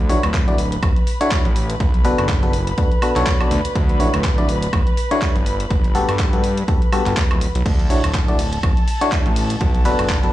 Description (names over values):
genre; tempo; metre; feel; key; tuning
piano house; 123 BPM; 4/4; swing 57% on 16ths; D major; A4 = 440 Hz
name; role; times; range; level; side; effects
muted chamber string section; sustained chords; 0.0-10.3 s; A4 to B5; -28 LUFS; equal; sidechain pumping
fat analog bass; bass; 0.0-10.3 s; D1 to G2; -21 LUFS; equal; tube saturation, sidechain pumping
barking FM electric piano; riff; 0.1-10.3 s; G2 to D5; -21 LUFS; left 1 dB; chorus, vintage 12-bit sampler grit, sidechain pumping, tape echo
garage drum kit; drums; 0.1-10.3 s; crash cymbal, handclaps, hi-hat, ride cymbal, woodblock; -27 LUFS; right 1 dB; none
electronic kick drum; drums; 0.3-10.2 s; none; -18 LUFS; equal; none
room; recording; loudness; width
digital ambience; dry, gritty hardware recording, transformer saturation, cassette tape, studio reverb; -16 LUFS; side -14 dB against mid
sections
0.0-10.3 A section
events
none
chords
0.0 Dmaj9; 1.8 Bm7; 3.8 Dmaj9; 5.5 Gmaj9; 7.7 Dmaj9; 9.6 Bm7